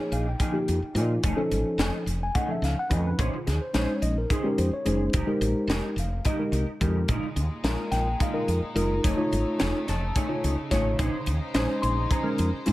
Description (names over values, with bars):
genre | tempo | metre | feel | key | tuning
electric jazz fusion | 215 BPM (eighths) | 7/8 | straight | F minor | A4 = 437 Hz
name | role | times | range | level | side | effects
mellow tine electric piano | accompaniment | 0.0-12.7 s | F3 to C6 | -28 LUFS | left 1 dB | phaser
mellow electric guitar | stabs | 0.1-12.7 s | F3 to C#5 | -34 LUFS | right 1 dB | ensemble chorus, tape echo
woody fretless electric bass | bass | 0.1-12.7 s | F1 to Bb2 | -27 LUFS | equal | none
crisp fusion drum kit | drums | 0.1-12.7 s | hi-hat, kick drum, snare drum | -29 LUFS | equal | none
rich studio string section | sustained chords | 7.1-12.7 s | Bb2 to C5 | -36 LUFS | equal | none
room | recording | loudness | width
light reverb, small room ambience | none | -24 LUFS | side -17 dB against mid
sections
0.0-12.7 A section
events
none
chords
0.0 Bb7sus4; 1.2 F7alt; 3.2 Bbm11; 5.1 Fm11; 7.1 Bb7sus4; 9.0 F7alt; 11.0 Bbm11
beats
0.12 0.40 0.68 0.95 | 1.23 1.51 1.79 2.07 2.35 2.63 2.91 | 3.19 3.46 3.74 4.02 4.30 4.58 4.86 | 5.14 5.42 5.70 5.97 6.25 6.53 6.81 | 7.09 7.37 7.65 7.93 8.21 8.49 8.77 | 9.04 9.32 9.60 9.88 10.16 10.44 10.72 | 10.99 11.27 11.55 11.83 12.11 12.39 12.67